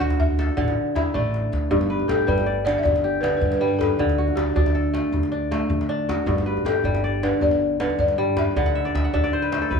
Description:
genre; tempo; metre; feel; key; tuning
west african traditional, West African string and xylophone music; 105 BPM (dotted quarters); 12/8; straight; G major; A4 = 439 Hz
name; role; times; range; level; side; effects
balafon; melody; 0.0-9.8 s; F#4 to F#5; -25 LUFS; left 2 dB; none
kora; arpeggios; 0.0-9.8 s; G2 to F#5; -23 LUFS; equal; none
upright bass; bass; 0.0-9.8 s; G1 to D3; -26 LUFS; equal; none
djembe; percussion; 0.1-9.8 s; none; -29 LUFS; left 1 dB; none
room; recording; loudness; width
moderate recital hall reverb, RT60 1.5 s; none; -19 LUFS; side -6 dB against mid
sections
0.0-1.7 A section; 1.7-9.8 B section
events
balafon solo 0.0-1.7; drum fill 1.1-1.7; kora fill 8.7-9.8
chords
0.0 D; 1.7 G; 4.0 D; 6.3 G; 8.6 D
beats
0.01 0.57 1.14 | 1.71 2.28 2.85 3.42 | 3.99 4.56 5.13 5.70 | 6.28 6.85 7.42 7.99 | 8.56 9.14 9.71

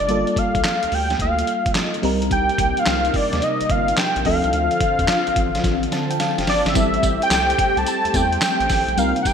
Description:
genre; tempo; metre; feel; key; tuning
R&B, new jack swing; 108 BPM; 4/4; swing 67% on 16ths; unclear; A4 = 440 Hz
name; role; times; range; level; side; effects
wide unison lead; melody; 0.0-9.3 s; D5 to A5; -20 LUFS; equal; none
FM electric piano with soft pad layer; accompaniment; 0.0-9.3 s; F3 to A5; -24 LUFS; left 1 dB; chorus, phaser
round analog bass; bass; 0.0-9.1 s; F1 to F2; -26 LUFS; equal; none
boom bap sampler-style drum kit; drums; 0.1-9.3 s; handclaps, hi-hat, kick drum, snare drum, tambourine; -23 LUFS; equal; gated reverb
phased analog pad; sustained chords; 2.5-9.3 s; C3 to G4; -27 LUFS; equal; phaser, chorus
room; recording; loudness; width
wet plate reverb, RT60 2.3 s; bright 1980s-style digital production; -17 LUFS; side -7 dB against mid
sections
0.0-6.8 A section; 6.8-9.3 B section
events
drum fill 5.6-6.8; FM electric piano fill 5.6-6.8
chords
0.1 Gm9; 2.0 Cm7; 4.3 Dm7; 6.8 Am7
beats
| 0.09 0.64 1.20 1.75 | 2.31 2.87 3.42 3.98 | 4.53 5.09 5.64 6.20 | 6.75 7.31 7.87 8.42 | 8.98

